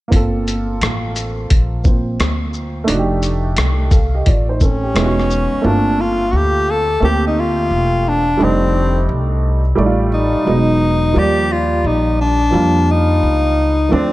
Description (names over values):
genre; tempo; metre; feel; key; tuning
hip hop, jazz-hop; 87 BPM; 4/4; swing 66% on 16ths; G minor; A4 = 439 Hz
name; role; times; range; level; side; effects
dark upright piano; accompaniment; 0.1-14.1 s; F3 to F5; -19 LUFS; right 3 dB; none
upright bass; bass; 0.1-14.1 s; E1 to F2; -18 LUFS; equal; none
boom bap sampler-style drum kit; drums; 0.1-5.5 s; hi-hat, kick drum, rim click, shaker; -16 LUFS; equal; none
breathy tenor saxophone; melody; 4.6-14.1 s; C4 to A4; -17 LUFS; left 2 dB; none
room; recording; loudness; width
light reverb, small room ambience; dark, warm production; -13 LUFS; side -17 dB against mid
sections
0.1-5.6 A section; 5.6-14.1 B section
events
none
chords
0.1 Gm11; 2.9 F13; 4.9 Emaj7; 5.6 Gm11; 8.4 F13; 10.5 Emaj7; 11.2 Ebmaj7